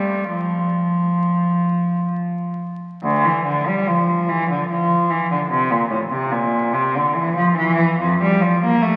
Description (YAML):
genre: classical, baroque-style suite movement for unaccompanied cello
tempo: 64-75 BPM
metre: 3/4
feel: rubato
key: unclear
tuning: A4 = 441 Hz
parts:
  - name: rich cello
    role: solo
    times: 0.0-9.0 s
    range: D2 to Bb3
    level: -19 LUFS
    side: equal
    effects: none
room: wet church reverb, RT60 3.3 s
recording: very old 78 rpm record, vinyl crackle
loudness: -19 LUFS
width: mono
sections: 0.0-3.0 A section; 3.0-9.0 A section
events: none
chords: none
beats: | 0.29 1.22 2.13 | 3.04 3.88 4.71 | 5.52 6.34 7.14 | 7.98 8.81